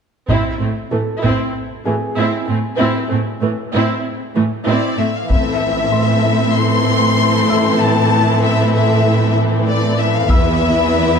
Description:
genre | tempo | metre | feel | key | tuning
cinematic, hybrid orchestral and electronic film score | 96 BPM | 4/4 | straight | A harmonic minor | A4 = 440 Hz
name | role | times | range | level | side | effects
rich symphonic viola section | accompaniment | 0.3-11.2 s | E3 to E4 | -19 LUFS | equal | none
rich symphonic cello section | bass | 0.3-11.2 s | E2 to A2 | -18 LUFS | right 3 dB | none
taiko ensemble | drums | 0.3-1.5, 5.3-6.5, 10.3-11.2 s | none | -19 LUFS | left 1 dB | none
felt-muted upright piano | texture | 0.9-11.2 s | G#4 to E6 | -29 LUFS | left 1 dB | tape echo
rich symphonic violin section | melody | 4.7-11.2 s | D5 to C6 | -18 LUFS | left 5 dB | none
warm symphonic violin section | second line | 5.3-11.2 s | E4 to B4 | -21 LUFS | left 5 dB | none
room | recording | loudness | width
moderate scoring stage reverb, RT60 1.8 s | dark, warm production | -14 LUFS | side -6 dB against mid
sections
0.3-5.3 A section; 5.3-11.2 B section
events
none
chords
0.3 Am; 10.3 E5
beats
| 0.30 0.92 1.55 2.17 | 2.80 3.42 4.05 4.67 | 5.30 5.92 6.55 7.17 | 7.80 8.42 9.05 9.67 | 10.30 10.92

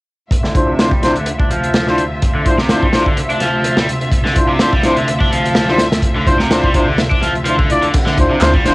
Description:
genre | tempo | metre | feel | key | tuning
breakbeat, breaks | 126 BPM | 4/4 | swing 55% on 16ths | D minor | A4 = 441 Hz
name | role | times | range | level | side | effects
clear studio string section | sustained chords | 0.3-8.7 s | D2 to E5 | -20 LUFS | equal | vintage 12-bit sampler grit, sidechain pumping, cassette tape
crunchy breakbeat drum kit | drums | 0.3-8.7 s | crash cymbal, hi-hat, kick drum, snare drum | -16 LUFS | equal | cassette tape
cranked stack guitar | riff | 0.4-8.7 s | C3 to D4 | -19 LUFS | equal | overdrive, tube saturation, low-pass filter, cassette tape, tape echo
mellow brass ensemble | stabs | 0.6-8.7 s | D4 to D5 | -17 LUFS | left 1 dB | low-pass filter, cassette tape, tape echo
dark detuned saw bass | bass | 8.2-8.7 s | D1 to D2 | -16 LUFS | equal | none
electronic handclaps | drums | 8.4-8.5 s | none | -22 LUFS | equal | cassette tape
room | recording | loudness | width
moderate booth ambience, RT60 0.2 s | home recording on cassette | -12 LUFS | side -21 dB against mid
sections
0.3-7.9 A section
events
filter sweep on overdriven electric guitar 0.3-7.9; filter sweep on brass ensemble 0.3-7.9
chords
0.3 Dm9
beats
| 0.32 0.79 1.27 1.75 | 2.22 2.70 3.17 3.65 | 4.13 4.60 5.08 5.55 | 6.03 6.51 6.98 7.46 | 7.94 8.41

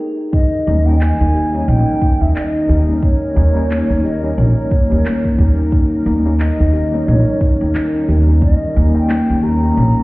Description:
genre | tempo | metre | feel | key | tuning
organic downtempo | 89 BPM | 4/4 | swing 59% on 16ths | unclear | A4 = 437 Hz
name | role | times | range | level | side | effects
kalimba | arpeggios | 0.0-10.0 s | Bb3 to Eb5 | -20 LUFS | equal | ping-pong delay
bass bansuri | melody | 0.3-10.0 s | Db5 to Bb5 | -23 LUFS | equal | vintage 12-bit sampler grit, ping-pong delay
warm analog pad | sustained chords | 0.3-10.0 s | Eb3 to Bb4 | -27 LUFS | right 1 dB | chorus, sidechain pumping
electronic kick drum | drums | 0.3-8.6 s | none | -14 LUFS | equal | none
electronic shaker and handclaps | drums | 0.3-10.0 s | none | -31 LUFS | equal | low-pass filter on snare, low-pass filter on perc
mellow tine electric piano | accompaniment | 0.7-10.0 s | G3 to G4 | -23 LUFS | left 2 dB | medium tremolo, sidechain pumping
upright bass | bass | 0.7-9.9 s | Bb1 to Eb2 | -14 LUFS | equal | sidechain pumping
room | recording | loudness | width
light reverb, studio reverb | heard muffled through a wall, stone room reverb, EQ | -12 LUFS | side -21 dB against mid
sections
0.3-10.0 A section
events
break 0.0-0.3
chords
0.3 Eb7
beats
| 0.33 1.01 1.68 2.35 | 3.03 3.70 4.38 5.05 | 5.72 6.40 7.07 7.75 | 8.42 9.10 9.77

